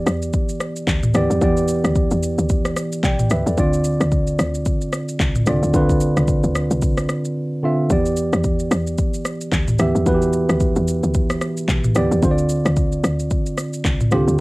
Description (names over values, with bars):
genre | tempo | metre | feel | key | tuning
amapiano | 111 BPM | 4/4 | swing 58% on 16ths | E phrygian | A4 = 441 Hz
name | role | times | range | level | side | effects
tine electric piano | accompaniment | 0.0-14.4 s | D3 to G5 | -20 LUFS | right 1 dB | overdrive, cassette tape
tight log drum bass | bass | 0.0-14.4 s | B1 to E2 | -22 LUFS | equal | none
afro-pop drum kit | drums | 0.1-14.4 s | handclaps, kick drum, rim click, shaker, toms | -21 LUFS | equal | overdrive
room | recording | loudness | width
light reverb | home recording on cassette | -16 LUFS | side -22 dB against mid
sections
0.0-14.4 A section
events
silent gap 7.4-7.9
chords
0.0 Em7; 3.6 Dm7; 7.9 Em7; 12.2 Dm7